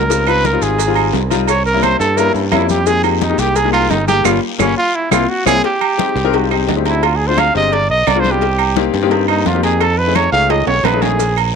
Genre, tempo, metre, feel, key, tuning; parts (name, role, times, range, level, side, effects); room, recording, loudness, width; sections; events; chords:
Afro-Cuban jazz; 173 BPM; 4/4; straight; F minor; A4 = 440 Hz
mellow trumpet; melody; 0.0-11.4 s; Bb3 to F5; -16 LUFS; right 2 dB
modern bright fingered electric bass; bass; 0.0-11.6 s; G1 to G2; -18 LUFS; right 1 dB
clear upright piano; accompaniment; 0.1-11.2 s; G3 to Bb4; -19 LUFS; left 13 dB
agogo bells and timbales; percussion; 0.1-11.5 s; -21 LUFS; right 17 dB
congas; percussion; 0.1-11.5 s; -24 LUFS; left 11 dB
cowbell; percussion; 0.1-11.4 s; -25 LUFS; left 14 dB
guiro; percussion; 0.1-11.5 s; -30 LUFS; left 15 dB
maracas; percussion; 0.1-5.6, 11.2-11.5 s; -28 LUFS; right 19 dB
claves; percussion; 0.3-11.5 s; -24 LUFS; right 15 dB
studio reverb; 1960s-style stereo with parts hard left and right; -12 LUFS; side -6 dB against mid
0.0-5.6 A section; 5.6-11.6 A section
trumpet solo 0.0-11.6; band accent 4.3-5.6; drum fill 4.8-5.6, 10.5-11.2
0.1 Dbmaj9#11; 1.5 C7b9; 2.9 Fm11; 4.3 Gdim; 5.0 C7; 5.6 Abmaj7#11; 7.0 Dm7b5; 7.7 G7b9; 8.4 Cm7; 9.8 F7alt